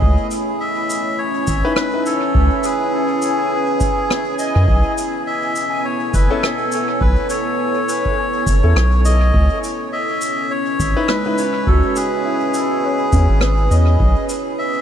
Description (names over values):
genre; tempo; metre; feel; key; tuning
ambient dub; 103 BPM; 4/4; swing 59% on 16ths; C# minor; A4 = 441 Hz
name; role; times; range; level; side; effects
melodica; melody; 0.0-14.8 s; G#4 to E5; -21 LUFS; left 1 dB; tape echo
deep dark ambient pad; sustained chords; 0.0-14.8 s; B3 to F#5; -22 LUFS; right 1 dB; chorus, built-in reverb
round analog bass; bass; 0.0-14.2 s; F#1 to F#2; -14 LUFS; equal; tube saturation
electronic kick drum; drums; 0.0-14.1 s; none; -20 LUFS; equal; none
bubbling stepped-filter texture; texture; 0.6-9.4 s; G#5; -29 LUFS; equal; chorus, built-in reverb
cabasa and rim click; drums; 0.3-14.4 s; none; -26 LUFS; equal; dub echo
warm upright piano; stabs; 1.6-2.1, 6.3-11.4 s; C#4 to B4; -26 LUFS; left 3 dB; dub echo
felt-muted upright piano; arpeggios; 11.1-14.8 s; G#3 to C#5; -25 LUFS; right 3 dB; tape echo
room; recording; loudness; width
light reverb, small room ambience; none; -15 LUFS; side -9 dB against mid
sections
0.0-9.3 A section; 9.3-14.8 A section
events
none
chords
0.0 C#m7; 4.7 B9sus4; 9.3 C#m9; 14.0 Bsus4